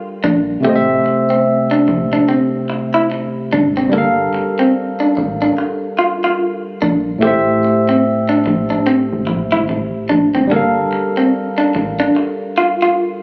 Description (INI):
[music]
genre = R&B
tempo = 73 BPM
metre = 4/4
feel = swing 60% on 16ths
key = G dorian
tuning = A4 = 439 Hz
[part]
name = barky tine electric piano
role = accompaniment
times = 0.0-13.2 s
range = A2 to F5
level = -19 LUFS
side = equal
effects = overdrive, phaser
[part]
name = electric guitar through a small old amp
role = second line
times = 0.2-12.9 s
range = A3 to F4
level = -18 LUFS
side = equal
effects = lush chorus
[part]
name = rubbery square bass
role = bass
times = 0.2-12.1 s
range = G1 to Bb1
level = -23 LUFS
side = equal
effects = none
[sound]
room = moderate plate reverb, RT60 2.7 s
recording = recorded on a phone in the room, club reverb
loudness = -16 LUFS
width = mono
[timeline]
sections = 0.0-13.2 A section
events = none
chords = 0.0 Gm9; 0.6 Am7; 3.9 Gm9; 7.2 Am7; 10.5 Gm9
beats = | 0.64 1.46 2.28 3.10 | 3.92 4.75 5.57 6.39 | 7.21 8.03 8.85 9.68 | 10.50 11.32 12.14 12.96